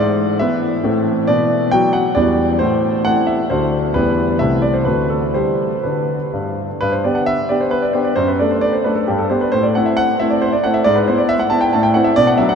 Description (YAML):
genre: classical-period piano sonatina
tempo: 134 BPM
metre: 3/4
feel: rubato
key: G major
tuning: A4 = 442 Hz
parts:
  - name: clear concert grand piano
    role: solo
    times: 0.0-12.6 s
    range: C2 to A5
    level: -14 LUFS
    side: equal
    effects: none
room: wet huge ambient reverb, RT60 7.8 s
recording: in a vast, echoing space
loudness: -14 LUFS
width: side -6 dB against mid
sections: 0.0-6.8 A section; 6.8-12.6 B section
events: none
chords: 0.0 E7/G#; 0.8 Am; 1.3 Bm; 2.2 Em7; 2.6 Am; 3.5 D7; 3.9 Em; 4.4 Am/C; 4.9 D7; 5.4 G; 8.2 D/F#; 9.1 G; 9.5 Am; 10.9 E/G#; 11.7 Am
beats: 0.41 0.84 | 1.28 1.72 2.16 | 2.60 3.05 3.50 | 3.95 4.40 4.87 | 5.35 5.84 6.33 | 6.81 7.27 7.73 | 8.18 8.63 9.09 | 9.54 9.98 10.42 | 10.86 11.29 11.73 | 12.17